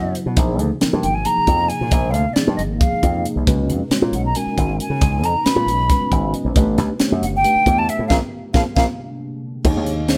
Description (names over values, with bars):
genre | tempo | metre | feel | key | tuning
electric jazz fusion | 272 BPM (eighths) | 7/8 | straight | unclear | A4 = 437 Hz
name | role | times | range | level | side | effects
hollow concert flute | melody | 0.0-10.2 s | Db5 to B5 | -22 LUFS | equal | none
mellow tine electric piano | accompaniment | 0.0-10.2 s | E#3 to G#5 | -27 LUFS | equal | none
deep dark ambient pad | sustained chords | 0.0-10.2 s | B#2 to G4 | -32 LUFS | equal | none
slap bass with an envelope filter | bass | 0.0-10.2 s | G1 to C#3 | -23 LUFS | equal | none
crisp fusion drum kit | drums | 0.1-10.2 s | crash cymbal, hi-hat, kick drum, snare drum | -22 LUFS | equal | none
room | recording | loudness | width
light reverb | band playing live in one room | -18 LUFS | mono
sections
0.0-9.7 A section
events
tine electric piano fill 5.9-6.6, 9.0-9.7; band accent 8.1-9.7; drum fill 8.3-9.7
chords
0.4 A#9sus4; 3.5 C#9sus4; 6.6 A9sus4; 8.1 A#9; 9.7 Eb9sus4